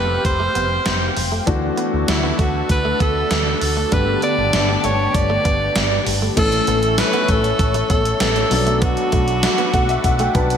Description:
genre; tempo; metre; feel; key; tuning
1980s-style pop; 98 BPM; 4/4; straight; unclear; A4 = 440 Hz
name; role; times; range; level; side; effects
edgy alto saxophone; melody; 0.0-10.6 s; E4 to D5; -20 LUFS; right 1 dB; ping-pong delay
warm concert grand piano; accompaniment; 0.0-10.6 s; D3 to A5; -24 LUFS; left 3 dB; slapback echo
phased analog pad; sustained chords; 0.0-10.6 s; C4 to D6; -27 LUFS; equal; phaser, chorus
direct-recorded clean electric guitar; riff; 0.0-10.5 s; G3 to D4; -28 LUFS; right 3 dB; lush chorus, ping-pong delay, slapback echo
woody fretless electric bass; bass; 0.0-10.6 s; F1 to D2; -23 LUFS; equal; none
gated 80s digital drum machine; drums; 0.2-10.6 s; crash cymbal, hi-hat, kick drum, snare drum, tambourine; -21 LUFS; equal; gated reverb, gated reverb snare
group handclap; percussion; 0.9-9.6 s; none; -38 LUFS; right 6 dB; none
room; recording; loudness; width
wet lush hall reverb, RT60 2.5 s; big arena sound; -15 LUFS; side -8 dB against mid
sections
0.0-6.4 A section; 6.4-10.6 B section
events
grand piano fill 9.4-10.6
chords
0.0 Fsus2; 1.5 Dadd9; 3.9 Gadd9; 6.4 A; 8.5 Bm7

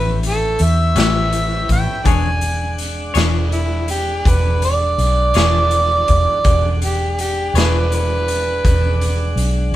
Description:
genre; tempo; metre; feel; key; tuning
slow blues; 55 BPM (dotted quarters); 12/8; straight; E mixolydian; A4 = 440 Hz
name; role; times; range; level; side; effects
overdriven harmonica; melody; 0.0-9.4 s; E4 to G#5; -19 LUFS; right 2 dB; none
tonewheel organ; sustained chords; 0.0-9.8 s; G#3 to F#5; -28 LUFS; left 1 dB; slow rotary speaker
vintage muted fingered electric bass; bass; 0.0-9.8 s; E1 to E2; -18 LUFS; equal; none
raw garage drum kit; drums; 0.2-9.5 s; hi-hat, kick drum, snare drum; -21 LUFS; equal; none
clean electric guitar; accompaniment; 1.0-7.8 s; A2 to C#5; -21 LUFS; left 7 dB; tremolo
room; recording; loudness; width
light reverb; band playing live in one room; -14 LUFS; side -14 dB against mid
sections
0.0-9.8 A section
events
none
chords
0.0 A9; 2.1 E9

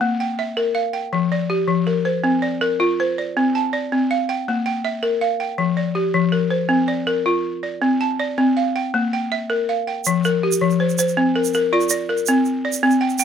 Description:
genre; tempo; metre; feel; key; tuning
west african traditional, West African string and xylophone music; 108 BPM (dotted quarters); 12/8; straight; F major; A4 = 437 Hz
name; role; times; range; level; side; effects
balafon; arpeggios; 0.0-13.2 s; F3 to A5; -18 LUFS; left 1 dB; none
egg shaker; percussion; 10.0-13.2 s; none; -23 LUFS; right 8 dB; none
room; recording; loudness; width
light reverb; close, detailed microphones; -18 LUFS; side -8 dB against mid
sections
0.0-10.0 A section; 10.0-13.2 A section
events
none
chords
0.0 Bb5; 1.1 F5; 3.4 C5; 4.5 Bb5; 5.6 F5; 7.8 C5; 8.9 Bb5; 10.0 F5; 12.3 C5

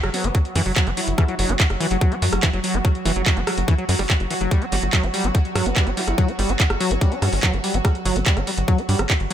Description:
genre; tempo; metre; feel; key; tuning
psychedelic trance; 144 BPM; 4/4; straight; unclear; A4 = 440 Hz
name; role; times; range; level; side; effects
pulsing gated texture; sustained chords; 0.0-9.3 s; F#3 to F#4; -27 LUFS; right 1 dB; chorus, built-in reverb, sidechain pumping
liquid acid bass; riff; 0.0-9.3 s; E3 to D4; -26 LUFS; moving between left 3 dB and right 5 dB; chorus, auto-pan, sidechain pumping, digital delay
tight sequencer bass; bass; 0.0-9.3 s; F#1 to G2; -23 LUFS; equal; none
drum and bass drum kit; drums; 0.0-9.3 s; handclaps, hi-hat, rim click; -24 LUFS; equal; none
formant-sweep wobble bass; second line; 0.1-1.6, 5.7-7.6 s; B3 to E4; -33 LUFS; left 4 dB; lush chorus, sidechain pumping, high-pass filter, digital delay
electronic kick drum; drums; 0.3-9.2 s; none; -18 LUFS; equal; none
room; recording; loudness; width
little or no reverb; none; -18 LUFS; side -10 dB against mid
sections
0.0-9.3 A section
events
none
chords
0.0 F#5; 4.5 G5

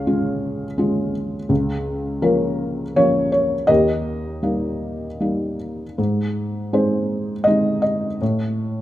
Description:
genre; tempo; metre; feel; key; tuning
classical, lyrical solo piano; 81 BPM; 3/4; uneven beats, rubato; Ab major; A4 = 442 Hz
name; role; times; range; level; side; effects
felt-muted upright piano; solo; 0.0-8.8 s; Db2 to F5; -18 LUFS; equal; none
room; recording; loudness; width
moderate recital hall reverb, RT60 1.5 s; none; -18 LUFS; side -14 dB against mid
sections
0.0-8.8 A section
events
none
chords
0.0 Db; 1.5 Bbm/Db; 3.7 Eb; 6.0 Ab; 8.2 N.C.

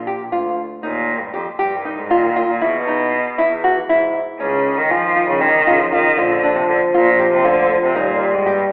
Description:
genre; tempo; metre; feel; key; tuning
contemporary instrumental, chamber music in an uneven meter; 236 BPM (eighths); 7/8; straight; unclear; A4 = 440 Hz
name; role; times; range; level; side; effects
rich cello; melody; 0.0-8.7 s; F2 to F3; -17 LUFS; equal; none
rich double bass; bass; 0.0-8.2 s; Bb1 to E3; -28 LUFS; equal; none
nylon-string guitar; arpeggios; 0.1-8.6 s; Db4 to G4; -18 LUFS; equal; none
dark French horn; second line; 4.4-8.7 s; Eb3 to G3; -18 LUFS; equal; none
small celesta; texture; 4.9-6.3 s; G5 to Ab5; -28 LUFS; equal; none
room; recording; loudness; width
wet recital hall reverb, RT60 1.4 s; heard from further back in the room, telephone sound; -14 LUFS; side -30 dB against mid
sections
0.0-8.7 A section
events
none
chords
0.0 Bb; 0.8 Eb; 2.6 E; 4.4 Db; 6.2 Bb; 8.0 Eb

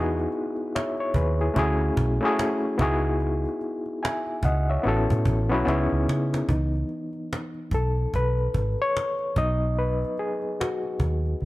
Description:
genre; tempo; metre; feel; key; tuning
R&B, neo-soul; 73 BPM; 4/4; swing 61% on 16ths; C# minor; A4 = 439 Hz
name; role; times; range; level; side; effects
overdriven reed electric piano; accompaniment; 0.0-11.4 s; E3 to G#5; -26 LUFS; left 1 dB; fast tremolo
vintage muted fingered electric bass; bass; 0.0-11.4 s; G#1 to C#3; -25 LUFS; equal; none
cajon; drums; 0.2-11.4 s; none; -28 LUFS; equal; none
room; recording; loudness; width
light reverb, small room ambience; dark, warm production; -23 LUFS; side -18 dB against mid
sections
0.0-6.5 A section; 6.5-11.4 B section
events
drum fill 5.7-6.5; reed electric piano solo 6.5-11.4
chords
0.0 Emaj7; 1.6 Dmaj9#11; 2.8 C#m11; 4.8 A69; 5.7 C#m9; 9.4 B6

